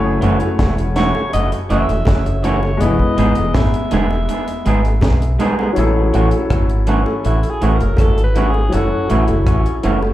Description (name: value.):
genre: lovers rock reggae.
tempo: 81 BPM.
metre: 4/4.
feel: straight.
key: unclear.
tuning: A4 = 440 Hz.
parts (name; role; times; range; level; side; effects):
warm grand piano; accompaniment; 0.0-10.1 s; F#3 to C#5; -22 LUFS; left 3 dB; tape echo, slapback echo.
deep dub fingered electric bass; bass; 0.0-10.1 s; E1 to B1; -16 LUFS; equal; none.
electric guitar through a small old amp; stabs; 0.2-10.0 s; E3 to G#4; -20 LUFS; right 2 dB; tape echo, slapback echo.
deep reggae drum kit; drums; 0.2-10.0 s; hi-hat, kick drum, rim click, snare drum; -19 LUFS; equal; tape echo.
bongos; percussion; 0.4-10.1 s; none; -27 LUFS; right 2 dB; tape echo, slapback echo.
warm alto saxophone; melody; 1.0-9.8 s; C#4 to E5; -24 LUFS; equal; tape echo, slapback echo.
room: light reverb.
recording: live gig heard through the venue's PA, club reverb.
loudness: -13 LUFS.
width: side -14 dB against mid.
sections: 0.0-5.8 A section; 5.8-10.1 B section.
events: alto saxophone solo 5.8-10.1.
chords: 0.0 F#m7; 2.8 Emaj7; 5.8 A6; 8.7 F#m7.